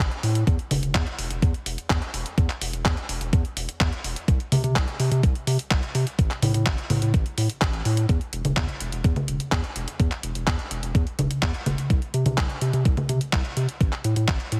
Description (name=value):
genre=italo disco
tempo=126 BPM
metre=4/4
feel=straight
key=unclear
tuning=A4 = 441 Hz
part: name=round analog bass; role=bass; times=0.0-14.6 s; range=E1 to C3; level=-28 LUFS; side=equal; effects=none
part: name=electronic kick drum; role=drums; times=0.0-14.4 s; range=none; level=-25 LUFS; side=equal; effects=small room ambience
part: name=detuned 8-bit digital drum machine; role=drums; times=0.1-14.6 s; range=congas, handclaps, hi-hat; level=-30 LUFS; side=equal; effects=small room ambience
room=light reverb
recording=heavily compressed radio sound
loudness=-24 LUFS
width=mono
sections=0.0-8.1 A section; 8.1-14.6 B section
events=none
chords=none